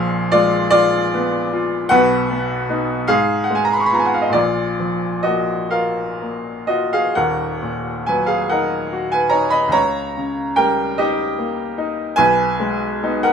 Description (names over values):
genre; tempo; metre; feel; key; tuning
classical, romantic nocturne for solo piano; 42-52 BPM (dotted quarters); 6/8; rubato; Eb minor; A4 = 441 Hz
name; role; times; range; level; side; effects
bright upright piano; solo; 0.0-13.3 s; Eb1 to Db6; -16 LUFS; equal; none
room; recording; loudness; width
light reverb; minimal, uncompressed stereo recording; -16 LUFS; side -7 dB against mid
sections
0.0-13.3 A section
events
none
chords
0.0 Bb7b9; 1.9 B; 3.1 Fdim/Ab; 4.3 Bb; 7.2 Ebm; 9.8 Eb7/Db; 12.2 Abm/Cb